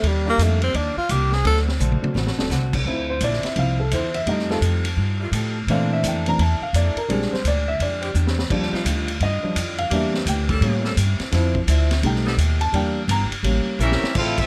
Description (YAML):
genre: jazz, big band swing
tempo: 170 BPM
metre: 4/4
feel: swing 64% on 8ths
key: D minor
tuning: A4 = 437 Hz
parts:
  - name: breathy tenor saxophone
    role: melody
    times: 0.0-1.6 s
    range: G3 to A4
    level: -24 LUFS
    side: equal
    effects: none
  - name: picked old ladder-braced acoustic guitar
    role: accompaniment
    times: 0.0-14.4 s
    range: A2 to A4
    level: -35 LUFS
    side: equal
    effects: none
  - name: upright bass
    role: bass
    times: 0.0-14.5 s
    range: D1 to Bb2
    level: -24 LUFS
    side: equal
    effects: none
  - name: vintage drum kit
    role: drums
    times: 0.0-14.4 s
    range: crash cymbal, hi-hat, kick drum, ride cymbal, snare drum, toms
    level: -29 LUFS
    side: equal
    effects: none
  - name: dark baby grand piano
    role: accompaniment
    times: 0.3-14.1 s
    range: E3 to Bb5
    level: -26 LUFS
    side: equal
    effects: none
  - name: mellow saxophone section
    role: sustained chords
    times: 0.3-14.1 s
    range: D3 to Bb4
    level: -33 LUFS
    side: equal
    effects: none
  - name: clear trumpet section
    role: melody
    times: 13.8-14.5 s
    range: C4 to F5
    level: -25 LUFS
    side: equal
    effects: none
  - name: warm trombone section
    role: second line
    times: 13.8-14.5 s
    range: G3 to F4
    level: -30 LUFS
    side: equal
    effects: none
room: light reverb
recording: none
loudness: -21 LUFS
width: mono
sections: 0.0-2.9 A section; 2.9-14.1 A section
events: tenor saxophone solo 0.0-2.9; drum fill 1.8-2.5, 8.2-8.5, 13.8-14.1; grand piano solo 2.9-14.1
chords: 0.0 Ebmaj7; 1.4 D7; 2.9 Dm9; 4.3 F9; 5.7 Bbmaj9#11; 7.1 Bb13; 8.5 Ebmaj9; 9.9 Em7b5; 10.6 A7b9; 11.3 Dm9; 12.0 Baug7; 12.7 Em7b5; 13.4 A7b9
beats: | 0.04 0.39 0.74 1.09 | 1.45 1.80 2.15 2.50 | 2.86 3.21 3.56 3.92 | 4.27 4.62 4.97 5.33 | 5.68 6.03 6.39 6.74 | 7.09 7.45 7.80 8.15 | 8.50 8.86 9.21 9.56 | 9.91 10.27 10.62 10.97 | 11.32 11.68 12.03 12.38 | 12.73 13.09 13.44 13.79 | 14.14